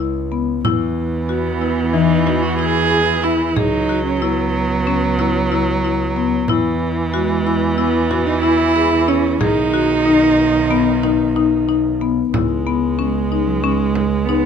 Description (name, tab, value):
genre	contemporary instrumental, chamber music in an uneven meter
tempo	185 BPM (eighths)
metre	9/8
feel	straight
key	C# minor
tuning	A4 = 439 Hz
part	dark cello	melody	0.0-14.5 s	F#3 to G#4	-19 LUFS	right 6 dB	none
part	marimba with medium mallets	arpeggios	0.0-14.5 s	E3 to G#4	-19 LUFS	left 10 dB	none
part	clear double bass	bass	0.0-14.5 s	B1 to E2	-23 LUFS	right 4 dB	none
part	warm viola	second line	0.6-14.5 s	D#3 to G#3	-22 LUFS	right 3 dB	none
part	frame drum	percussion	0.6-14.4 s	none	-24 LUFS	right 3 dB	none
room	light reverb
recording	close, detailed microphones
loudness	-15 LUFS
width	side -7 dB against mid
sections	0.0-12.3 A section; 12.3-14.5 B section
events	none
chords	0.0 C#m7; 0.6 E; 3.6 C#m7; 6.5 E; 9.4 B; 12.3 C#5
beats	0.00 0.32 | 0.65 0.97 1.29 1.62 1.94 2.27 2.59 2.92 3.24 | 3.57 3.89 4.22 4.54 4.87 5.19 5.51 5.84 6.16 | 6.49 6.81 7.14 7.46 7.79 8.11 8.44 8.76 9.09 | 9.41 9.73 10.06 10.38 10.71 11.03 11.36 11.68 12.01 | 12.33 12.66 12.98 13.31 13.63 13.96 14.28